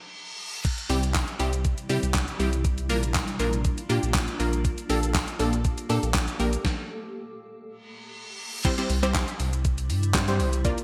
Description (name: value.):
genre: dance-pop.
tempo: 120 BPM.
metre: 4/4.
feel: straight.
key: unclear.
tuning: A4 = 440 Hz.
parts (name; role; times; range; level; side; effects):
reverse cymbal; sound effects; 0.0-0.6, 7.9-8.6 s; none; -39 LUFS; equal; none.
granular cloud pad; sustained chords; 1.8-10.8 s; C3 to A4; -38 LUFS; equal; built-in reverb, lush chorus, sidechain pumping.
gated 80s digital drum machine; drums; 0.6-10.8 s; crash cymbal, handclaps, hi-hat, kick drum, shaker, snare drum; -30 LUFS; equal; gated reverb, gated reverb snare.
unison pluck; accompaniment; 0.9-10.8 s; G3 to D5; -31 LUFS; equal; sidechain pumping.
round analog bass; bass; 0.9-10.7 s; Bb1 to C3; -29 LUFS; equal; sidechain pumping.
tambourine; percussion; 1.1-10.3 s; none; barely audible; none; none.
room: light reverb, digital ambience.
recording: bright 1980s-style digital production.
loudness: -26 LUFS.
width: mono.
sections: 0.6-8.6 A section; 8.6-10.8 B section.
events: reverse cymbal 0.0-0.6, 7.9-8.6; stop 0.0-0.6, 6.6-8.6.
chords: 0.0 N.C.; 0.6 C; 2.6 Bb; 4.6 Gmadd9/Bb; 6.6 N.C.; 8.6 C.